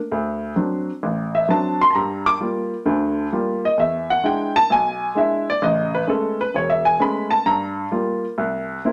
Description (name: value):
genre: solo jazz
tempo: 131 BPM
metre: 4/4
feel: swing 68% on 8ths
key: unclear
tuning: A4 = 440 Hz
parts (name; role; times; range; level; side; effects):
- warm upright piano; solo; 0.1-8.9 s; E1 to D6; -21 LUFS; equal; none
room: moderate studio reverb, RT60 0.7 s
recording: none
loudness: -21 LUFS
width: mono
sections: 0.0-8.9 A section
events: upright piano solo 0.0-8.9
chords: 0.1 D7; 1.9 Gm7; 3.8 E7; 5.6 Amaj9; 7.5 Gm7; 8.4 C7